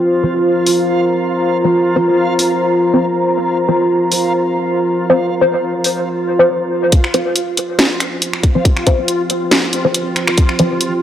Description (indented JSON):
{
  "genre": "deep dubstep",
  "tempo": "139 BPM",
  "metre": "4/4",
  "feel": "swing 54% on 16ths, half-time",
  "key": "unclear",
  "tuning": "A4 = 440 Hz",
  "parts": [
    { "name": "dark analog pad", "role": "sustained chords", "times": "0.0-11.0 s", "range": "F4 to Bb5", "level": "-17 LUFS", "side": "equal", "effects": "chorus" },
    { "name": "backwards swelling texture", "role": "texture", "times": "0.0-11.0 s", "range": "F4", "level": "-20 LUFS", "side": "right 1 dB", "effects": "built-in reverb" },
    { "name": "filtered dub chord stab", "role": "stabs", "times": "0.2-10.7 s", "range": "F3 to C5", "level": "-16 LUFS", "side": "left 1 dB", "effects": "phaser, wide subtle chorus, dub echo" },
    { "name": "garage drum kit", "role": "drums", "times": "0.7-10.9 s", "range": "finger snaps, hi-hat, snare drum", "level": "-16 LUFS", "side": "equal", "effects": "none" },
    { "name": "electronic kick drum", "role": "drums", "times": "6.9-10.5 s", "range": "none", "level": "-12 LUFS", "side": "equal", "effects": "none" }
  ],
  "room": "moderate lush hall reverb, RT60 1.9 s, digital ambience",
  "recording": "dry, gritty hardware recording, transformer saturation",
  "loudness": "-12 LUFS",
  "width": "side -10 dB against mid",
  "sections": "0.0-6.9 A section; 6.9-11.0 B section",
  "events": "build-up 6.9-11.0; filter sweep on synth stab 6.9-11.0",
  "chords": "0.0 F5",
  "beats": "| 0.02 0.45 0.88 1.31 | 1.75 2.18 2.61 3.04 | 3.47 3.90 4.33 4.77 | 5.20 5.63 6.06 6.49 | 6.92 7.36 7.79 8.22 | 8.65 9.08 9.51 9.95 | 10.38 10.81"
}